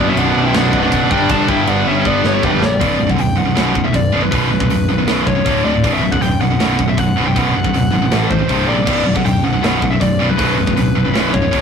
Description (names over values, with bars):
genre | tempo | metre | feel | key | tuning
heavy metal | 158 BPM | 4/4 | straight | B minor | A4 = 440 Hz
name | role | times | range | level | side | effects
high-gain lead guitar | melody | 0.0-11.6 s | B4 to A5 | -21 LUFS | left 2 dB | distortion
high-gain lead guitar | second line | 0.0-2.7 s | G3 to E4 | -20 LUFS | right 2 dB | distortion
distorted electric guitar | riff | 0.0-2.8 s | B1 to G3 | -24 LUFS | left 1 dB | overdrive
scooped high-gain guitar | riff | 0.0-11.6 s | B1 to A3 | -20 LUFS | left 6 dB | distortion
scooped high-gain guitar | riff | 0.0-11.6 s | B1 to A3 | -17 LUFS | right 4 dB | distortion
modern bright picked electric bass | bass | 0.0-11.6 s | B0 to A#1 | -21 LUFS | left 1 dB | none
tight metal drum kit | drums | 0.2-11.6 s | china cymbal, crash cymbal, hi-hat, kick drum, snare drum, toms | -22 LUFS | equal | none
room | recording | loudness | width
moderate small room reverb, RT60 0.5 s | rough rehearsal-room recording, tube saturation | -12 LUFS | side -6 dB against mid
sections
0.0-2.8 A section; 2.8-11.6 B section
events
drum fill 2.1-2.8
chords
0.0 B5; 1.1 G5; 2.8 Bm; 5.5 D5; 5.8 Bm; 8.1 A5; 8.5 C5; 8.9 Bm